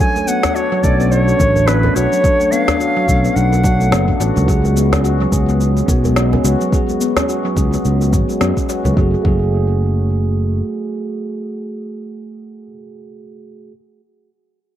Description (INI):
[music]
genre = organic downtempo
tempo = 107 BPM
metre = 4/4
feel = swing 58% on 16ths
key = F# harmonic minor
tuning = A4 = 440 Hz
[part]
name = bright reedy bansuri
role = melody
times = 0.0-4.2 s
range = B4 to G#5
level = -18 LUFS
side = equal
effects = analog delay
[part]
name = tine electric piano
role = accompaniment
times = 0.0-13.7 s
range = A3 to C#5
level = -22 LUFS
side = right 3 dB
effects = phaser, sidechain pumping, dub echo
[part]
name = handpan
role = arpeggios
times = 0.0-9.4 s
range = F#3 to F#4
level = -20 LUFS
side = left 2 dB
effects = low-pass filter, tape echo
[part]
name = electronic cabasa and snare drum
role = drums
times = 0.0-8.9 s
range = none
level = -23 LUFS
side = left 1 dB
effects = dub echo
[part]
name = electronic kick drum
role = drums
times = 0.0-9.4 s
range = none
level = -18 LUFS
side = equal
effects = none
[part]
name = djembe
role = percussion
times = 0.2-8.9 s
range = none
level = -27 LUFS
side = right 1 dB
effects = none
[part]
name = sustaining fretless electric bass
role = bass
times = 0.8-10.6 s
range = F#1 to F#2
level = -16 LUFS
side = equal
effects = tube saturation, sidechain pumping
[sound]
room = moderate spring reverb, RT60 1.8 s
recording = echo-heavy mix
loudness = -13 LUFS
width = side -11 dB against mid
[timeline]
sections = 0.0-9.0 A section; 9.0-11.2 B section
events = none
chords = 0.0 Bm7; 4.5 C#7sus4; 9.0 F#madd9